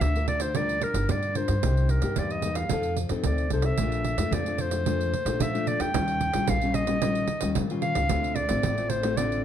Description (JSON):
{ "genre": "samba and choro", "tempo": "111 BPM", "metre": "4/4", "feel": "straight", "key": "unclear", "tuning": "A4 = 440 Hz", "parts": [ { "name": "clear clarinet", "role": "melody", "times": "0.0-9.4 s", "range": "Bb4 to G5", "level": "-29 LUFS", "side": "equal", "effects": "none" }, { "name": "nylon-string guitar", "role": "accompaniment", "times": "0.0-9.4 s", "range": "G2 to Bb4", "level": "-30 LUFS", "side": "left 5 dB", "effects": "none" }, { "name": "upright bass", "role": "bass", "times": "0.0-9.4 s", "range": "G1 to Eb3", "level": "-28 LUFS", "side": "equal", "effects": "none" }, { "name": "pandeiro", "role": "percussion", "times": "0.0-9.4 s", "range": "none", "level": "-31 LUFS", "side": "right 8 dB", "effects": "none" } ], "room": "light reverb", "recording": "dark, warm production", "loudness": "-24 LUFS", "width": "side -9 dB against mid", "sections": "0.0-9.4 A section", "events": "none", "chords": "0.0 Gm7; 1.6 Cm7; 2.7 F7; 3.8 Bbmaj7; 5.9 Eb9; 8.1 Dm7", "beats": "0.02 0.56 1.10 | 1.64 2.17 2.71 3.25 | 3.79 4.33 4.87 5.41 | 5.95 6.49 7.03 7.56 | 8.10 8.64 9.18" }